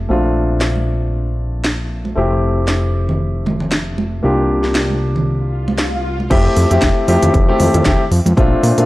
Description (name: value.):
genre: nu-disco, nu disco.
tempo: 116 BPM.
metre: 4/4.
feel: swing 56% on 16ths.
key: F major.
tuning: A4 = 442 Hz.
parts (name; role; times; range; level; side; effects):
dark concert grand piano; accompaniment; 0.0-8.9 s; A3 to G4; -18 LUFS; left 1 dB; tape echo.
fat analog bass; bass; 0.0-8.9 s; F1 to Bb2; -17 LUFS; equal; none.
house drum kit; drums; 0.6-8.9 s; crash cymbal, hi-hat, snare drum; -22 LUFS; equal; studio reverb.
congas; percussion; 0.8-8.4 s; none; -23 LUFS; right 2 dB; none.
swell; sound effects; 5.5-6.3 s; none; -27 LUFS; left 2 dB; none.
electronic kick drum; drums; 6.3-8.5 s; none; -15 LUFS; equal; studio reverb.
room: little or no reverb.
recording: dry, gritty hardware recording, transformer saturation, cassette tape, lossy compression artefacts.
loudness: -13 LUFS.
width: side -18 dB against mid.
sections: 0.0-6.3 A section; 6.3-8.9 B section.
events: swell 5.5-6.3; drop 6.3-8.9.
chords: 0.1 Bbmaj7; 2.2 Fmaj7; 4.2 C7sus4; 6.3 Fmaj7.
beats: | 0.10 0.62 1.13 1.65 | 2.17 2.69 3.20 3.72 | 4.24 4.75 5.27 5.79 | 6.31 6.82 7.34 7.86 | 8.38.